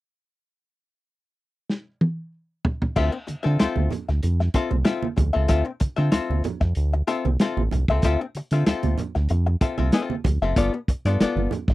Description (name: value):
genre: funk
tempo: 95 BPM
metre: 4/4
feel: straight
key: D dorian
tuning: A4 = 436 Hz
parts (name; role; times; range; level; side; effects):
- warm soul drum kit; drums; 1.7-11.7 s; crash cymbal, hi-hat, kick drum, snare drum, toms; -22 LUFS; equal; none
- archtop guitar, miked and amplified; accompaniment; 3.0-11.7 s; B3 to E5; -25 LUFS; left 4 dB; wah
- round analog bass; bass; 3.0-11.7 s; F#1 to D3; -22 LUFS; equal; none
- congas; percussion; 3.3-11.7 s; none; -29 LUFS; right 6 dB; none
room: little or no reverb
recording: dry, close 1970s-style studio recording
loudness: -20 LUFS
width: side -17 dB against mid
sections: 0.4-3.0 A section; 3.0-11.7 B section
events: drum fill 1.7-3.0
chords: 0.4 N.C.; 3.0 Dm9; 10.6 G9